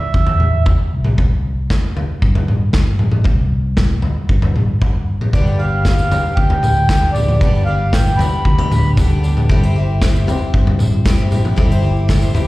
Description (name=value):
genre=indie folk with a building arrangement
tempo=116 BPM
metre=4/4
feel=straight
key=unclear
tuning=A4 = 440 Hz
part: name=mellow accordion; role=melody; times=0.0-0.6, 5.3-8.9 s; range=D5 to B5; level=-20 LUFS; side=right 1 dB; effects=slapback echo
part: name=fingered electric bass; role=bass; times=0.1-12.4 s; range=G1 to G2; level=-17 LUFS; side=equal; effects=none
part: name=loose indie drum kit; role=drums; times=0.1-12.5 s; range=kick drum, snare drum, toms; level=-16 LUFS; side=equal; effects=none
part: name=fingerpicked steel-string acoustic guitar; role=accompaniment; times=5.3-12.5 s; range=D3 to C5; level=-28 LUFS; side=left 2 dB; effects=slapback echo
part: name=picked twelve-string acoustic guitar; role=accompaniment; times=5.3-12.5 s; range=G2 to G4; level=-24 LUFS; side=left 4 dB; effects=slapback echo
part: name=tambourine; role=percussion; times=5.3-12.5 s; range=none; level=-37 LUFS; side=right 2 dB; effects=none
room=small room ambience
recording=live gig heard through the venue's PA, recital hall reverb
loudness=-13 LUFS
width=side -18 dB against mid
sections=0.0-12.5 A section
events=none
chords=0.0 N.C.; 0.9 C5; 5.3 G; 9.5 C/G